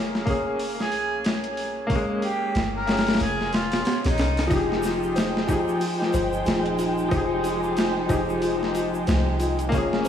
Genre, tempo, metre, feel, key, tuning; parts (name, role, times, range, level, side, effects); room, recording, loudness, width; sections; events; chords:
trip hop; 92 BPM; 4/4; swing 59% on 16ths; F minor; A4 = 440 Hz
bright upright piano; accompaniment; 0.0-10.1 s; F3 to Ab4; -26 LUFS; left 1 dB; tremolo, low-pass filter, tape echo
soft 808-style bass; bass; 0.0-10.1 s; Eb1 to C2; -29 LUFS; equal
boom bap sampler-style drum kit; drums; 0.2-10.1 s; hi-hat, kick drum, snare drum; -27 LUFS; equal; overdrive
mellow harmonica; melody; 0.8-4.5 s; Eb4 to Bb4; -30 LUFS; equal; dub echo
dark studio string section; sustained chords; 4.5-10.1 s; F3 to G5; -28 LUFS; equal
music box; arpeggios; 4.5-10.1 s; F4 to C5; -30 LUFS; left 1 dB; tape echo
egg shaker; percussion; 4.5-10.1 s; -48 LUFS; right 2 dB
wet lush hall reverb, RT60 2.7 s; dreamy mix soaked in reverb, vinyl crackle, studio ambience; -21 LUFS; side -9 dB against mid
0.0-10.1 A section
kick drops out 3.2-4.5
0.0 Bbm7/F; 4.5 Fm9